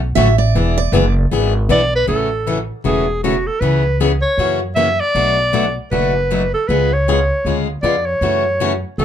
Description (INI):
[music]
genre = acoustic string swing (jazz manouche)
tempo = 156 BPM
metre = 4/4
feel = swing 62% on 8ths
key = A major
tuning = A4 = 440 Hz
[part]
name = upright bass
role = bass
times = 0.0-9.0 s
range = E1 to F#2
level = -18 LUFS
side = equal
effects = none
[part]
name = picked steel-string acoustic guitar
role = second line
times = 0.2-1.1 s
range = D5 to E5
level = -20 LUFS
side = right 8 dB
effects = none
[part]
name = picked plugged-in swing-style acoustic guitar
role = accompaniment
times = 0.2-9.0 s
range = B2 to G#4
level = -19 LUFS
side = left 4 dB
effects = none
[part]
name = breathy clarinet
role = melody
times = 1.7-9.0 s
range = F#4 to E5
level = -17 LUFS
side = right 1 dB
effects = plate reverb
[sound]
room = light reverb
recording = dark, warm production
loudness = -14 LUFS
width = side -9 dB against mid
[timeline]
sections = 0.0-2.1 A section; 2.1-9.0 B section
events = steel-string acoustic guitar solo 0.0-2.1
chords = 0.0 Dmaj7; 0.5 E7; 2.1 A6; 3.6 C#m7; 4.4 F#7; 5.1 Bm7; 6.7 C#7; 8.2 F#m7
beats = 0.16 | 0.54 0.92 1.31 1.69 | 2.07 2.46 2.84 3.22 | 3.61 3.99 4.38 4.76 | 5.14 5.53 5.91 6.30 | 6.68 7.06 7.45 7.83 | 8.22 8.60 8.98